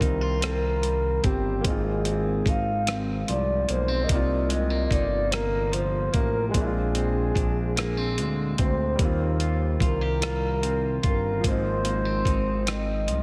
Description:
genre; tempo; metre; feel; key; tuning
slow six-eight R&B; 49 BPM (dotted quarters); 6/8; straight; unclear; A4 = 440 Hz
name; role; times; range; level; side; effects
breathy flugelhorn; melody; 0.0-13.2 s; G4 to F5; -31 LUFS; equal; slapback echo
electric guitar at the edge of break-up; second line; 0.0-13.2 s; Ab2 to G4; -33 LUFS; equal; none
clear grand piano; accompaniment; 0.0-13.2 s; F3 to F4; -37 LUFS; equal; slapback echo
smooth gliding synth bass; bass; 0.0-13.2 s; G1 to Eb2; -30 LUFS; equal; none
dusty soul sampler-style drum kit; drums; 0.0-13.2 s; hi-hat, kick drum, rim click; -29 LUFS; equal; none
room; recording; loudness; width
light reverb, digital ambience; none; -25 LUFS; mono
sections
0.0-13.2 A section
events
kick muted 2.9-4.1; break 12.7-13.2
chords
0.0 Eb69; 1.6 Ab6; 4.1 Cm7; 6.5 Bb9; 9.0 Eb69; 11.4 Ab6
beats
0.42 | 1.64 2.87 | 4.09 5.32 | 6.54 7.76 | 8.99 10.21 | 11.44 12.66

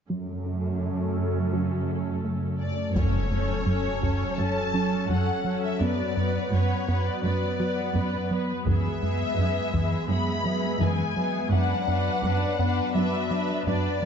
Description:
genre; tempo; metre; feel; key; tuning
cinematic, hybrid orchestral and electronic film score; 84 BPM; 4/4; straight; F# minor; A4 = 441 Hz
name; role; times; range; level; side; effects
rich symphonic viola section; accompaniment; 0.1-14.1 s; B3 to B4; -33 LUFS; equal; low-pass filter
phased analog pad; sustained chords; 0.1-14.1 s; C#3 to F#5; -31 LUFS; left 1 dB; phaser, chorus, low-pass filter
tight sequenced synth; arpeggios; 0.1-13.9 s; E3 to F#4; -35 LUFS; left 2 dB; chorus, low-pass filter, ping-pong delay
warm symphonic cello section; bass; 0.1-14.1 s; F#2; -30 LUFS; right 2 dB; none
rich symphonic violin section; melody; 2.6-14.1 s; C#5 to B5; -31 LUFS; left 5 dB; low-pass filter
rubbery square bass; riff; 3.0-14.1 s; F#2 to F#3; -28 LUFS; right 2 dB; low-pass filter
taiko ensemble; drums; 3.0-4.4, 8.7-10.1 s; none; -33 LUFS; left 1 dB; none
impact; sound effects; 3.0-5.8 s; none; -33 LUFS; left 1 dB; none
room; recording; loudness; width
moderate scoring stage reverb, RT60 2.1 s; dark, warm production, nothing above 7.6 kHz; -24 LUFS; side -7 dB against mid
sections
0.1-3.0 A section; 3.0-14.1 B section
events
filter sweep 0.1-3.0; impact 3.0-5.8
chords
0.1 F#m; 5.8 Bm/F#; 8.7 E/F#; 11.5 Bm/F#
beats
| 0.10 0.81 1.53 2.24 | 2.96 3.67 4.38 5.10 | 5.81 6.53 7.24 7.96 | 8.67 9.38 10.10 10.81 | 11.53 12.24 12.96 13.67

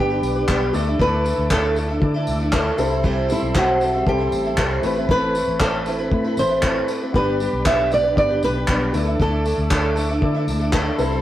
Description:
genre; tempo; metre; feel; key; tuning
acoustic pop; 117 BPM; 4/4; straight; unclear; A4 = 444 Hz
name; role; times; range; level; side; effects
flamenco guitar; melody; 0.0-11.0 s; E4 to E5; -22 LUFS; equal; none
picked twelve-string acoustic guitar; accompaniment; 0.0-11.2 s; A2 to B4; -24 LUFS; right 2 dB; none
warm upright piano; accompaniment; 0.0-11.2 s; G3 to E5; -28 LUFS; left 3 dB; none
tonewheel organ; sustained chords; 0.0-11.2 s; C4 to D6; -32 LUFS; equal; chorus vibrato, slow rotary speaker
vintage muted fingered electric bass; bass; 0.0-11.2 s; G1 to D3; -24 LUFS; equal; none
cloth-damped thuddy drum kit; drums; 0.2-11.1 s; handclaps, kick drum, tambourine; -23 LUFS; equal; none
room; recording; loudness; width
moderate studio reverb, RT60 0.6 s; rough rehearsal-room recording; -17 LUFS; side -13 dB against mid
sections
0.0-11.2 A section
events
upright piano fill 2.3-3.0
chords
0.0 G; 0.7 Dsus2; 2.8 C6; 4.8 Amadd9; 7.1 G; 8.9 Dsus2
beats
0.48 | 0.99 1.50 2.02 2.53 | 3.04 3.55 4.07 4.58 | 5.09 5.60 6.12 6.63 | 7.14 7.65 8.17 8.68 | 9.19 9.71 10.22 10.73

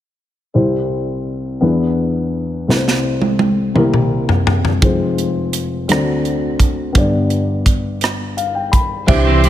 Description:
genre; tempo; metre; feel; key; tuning
slow gospel; 56 BPM (dotted quarters); 6/8; straight; C major; A4 = 441 Hz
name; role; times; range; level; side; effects
dark baby grand piano; accompaniment; 0.5-9.5 s; F1 to B5; -17 LUFS; left 2 dB; none
crisp fusion drum kit; drums; 2.7-9.5 s; crash cymbal, hi-hat, kick drum, rim click, snare drum, toms; -16 LUFS; right 1 dB; none
clean electric guitar; second line; 9.1-9.5 s; E3 to E4; -18 LUFS; right 5 dB; none
percussive tonewheel organ; sustained chords; 9.1-9.5 s; E3 to G4; -20 LUFS; right 4 dB; slow rotary speaker, overdrive, chorus vibrato
warm studio string section; sustained chords; 9.1-9.5 s; C5 to C6; -22 LUFS; left 2 dB; none
fingered electric bass; bass; 9.1-9.5 s; C2; -14 LUFS; right 1 dB; none
room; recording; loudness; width
light reverb, small room ambience; none; -14 LUFS; side -12 dB against mid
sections
0.6-9.1 A section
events
drum fill 2.7-4.8; grand piano fill 8.0-9.1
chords
0.6 C; 1.6 E7; 2.7 Am/C; 3.8 C7; 4.8 Fm; 5.9 D7; 7.0 G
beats
| 0.56 1.62 | 2.69 3.75 | 4.82 5.89 | 6.95 8.02 | 9.08

